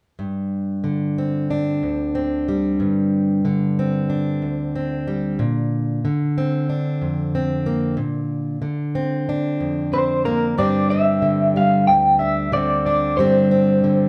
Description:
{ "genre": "folk", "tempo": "92 BPM", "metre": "4/4", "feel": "straight", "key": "unclear", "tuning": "A4 = 440 Hz", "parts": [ { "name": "fingerpicked plugged-in steel-string acoustic guitar", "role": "accompaniment", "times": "0.2-14.1 s", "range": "D2 to D4", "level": "-22 LUFS", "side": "equal", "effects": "none" }, { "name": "electric guitar through a small old amp", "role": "melody", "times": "9.9-14.1 s", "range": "Bb4 to G5", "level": "-20 LUFS", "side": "equal", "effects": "tremolo" } ], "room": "wet large studio reverb, RT60 0.9 s", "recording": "band playing live in one room", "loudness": "-20 LUFS", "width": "mono", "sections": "0.2-10.6 A section; 10.6-14.1 B section", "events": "none", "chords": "0.2 Gsus4; 5.4 Bbadd9; 10.6 Gsus4" }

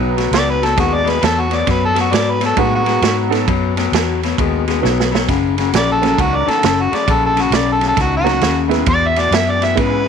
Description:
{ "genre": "electric blues shuffle", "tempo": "133 BPM", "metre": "4/4", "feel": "swing 64% on 8ths", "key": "B mixolydian", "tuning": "A4 = 439 Hz", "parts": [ { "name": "honky-tonk upright piano", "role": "accompaniment", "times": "0.0-10.0 s", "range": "F#3 to B4", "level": "-21 LUFS", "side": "right 13 dB", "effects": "none" }, { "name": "electric guitar through a small old amp", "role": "riff", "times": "0.0-10.1 s", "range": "E2 to G#3", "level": "-19 LUFS", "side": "left 15 dB", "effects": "none" }, { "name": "vintage muted fingered electric bass", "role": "bass", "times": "0.0-10.1 s", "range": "F#1 to A2", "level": "-21 LUFS", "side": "equal", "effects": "none" }, { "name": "vintage drum kit", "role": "drums", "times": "0.2-9.9 s", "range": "kick drum, ride cymbal, snare drum", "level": "-20 LUFS", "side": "right 6 dB", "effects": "none" }, { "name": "overdriven harmonica", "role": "melody", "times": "0.3-10.1 s", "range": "F#4 to E5", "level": "-17 LUFS", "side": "equal", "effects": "none" } ], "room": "light reverb", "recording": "1960s-style stereo with parts hard left and right", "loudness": "-13 LUFS", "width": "side -7 dB against mid", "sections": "0.0-10.1 A section", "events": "harmonica solo 0.0-10.1; drum fill 4.8-5.3", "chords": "0.0 B; 5.3 F#; 8.9 E" }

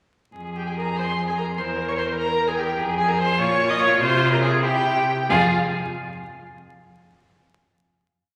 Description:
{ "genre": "quick classical-period movement for string quartet", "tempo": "90-100 BPM (dotted quarters)", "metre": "6/8", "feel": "straight", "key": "F minor", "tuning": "A4 = 441 Hz", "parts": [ { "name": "rich violin", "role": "second line", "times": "0.4-5.5 s", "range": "E4 to Bb4", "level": "-28 LUFS", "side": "equal", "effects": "none" }, { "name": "rich cello", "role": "bass", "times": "0.4-5.5 s", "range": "E2 to C3", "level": "-28 LUFS", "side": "equal", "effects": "none" }, { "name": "rich violin", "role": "melody", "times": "0.6-5.5 s", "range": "F5 to Eb6", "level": "-28 LUFS", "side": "equal", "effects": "none" }, { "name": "rich viola", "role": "accompaniment", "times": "0.6-5.5 s", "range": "F4 to Eb5", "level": "-26 LUFS", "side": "equal", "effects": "none" } ], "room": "wet concert hall reverb, RT60 2.3 s", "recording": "vinyl crackle", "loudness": "-22 LUFS", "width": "mono", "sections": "0.4-5.3 A section; 5.3-6.6 final chord", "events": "none", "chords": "0.4 Fm; 1.6 C7/E; 2.8 Fm; 3.4 Bbm; 4.0 Csus4; 4.6 C; 5.3 N.C." }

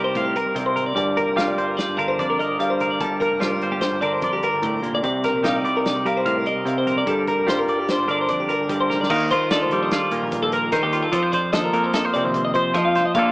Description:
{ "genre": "math rock and midwest emo", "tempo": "148 BPM", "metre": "5/4", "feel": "straight", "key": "G minor", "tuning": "A4 = 438 Hz", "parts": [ { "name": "twelve-string electric guitar", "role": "accompaniment", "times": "0.0-13.3 s", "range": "G2 to F5", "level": "-21 LUFS", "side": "right 1 dB", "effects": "none" }, { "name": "twelve-string electric guitar", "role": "arpeggios", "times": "0.0-13.3 s", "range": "G4 to F5", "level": "-23 LUFS", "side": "left 1 dB", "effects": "spring reverb" }, { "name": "growling picked electric bass", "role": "bass", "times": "0.0-13.3 s", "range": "F1 to F3", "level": "-32 LUFS", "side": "equal", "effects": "overdrive" }, { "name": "loose indie drum kit", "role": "drums", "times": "0.2-13.2 s", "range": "crash cymbal, hi-hat, kick drum, snare drum", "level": "-29 LUFS", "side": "equal", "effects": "none" } ], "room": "moderate plate reverb, RT60 2.1 s", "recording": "rough home demo mix, small speaker sound", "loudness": "-18 LUFS", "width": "side -24 dB against mid", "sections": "0.0-9.1 A section; 9.1-13.3 B section", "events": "drum fill 8.9", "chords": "0.0 Cm11; 1.0 Gm7; 5.0 Cm11; 7.1 Gm7; 9.1 Ebadd9; 11.1 F7sus4" }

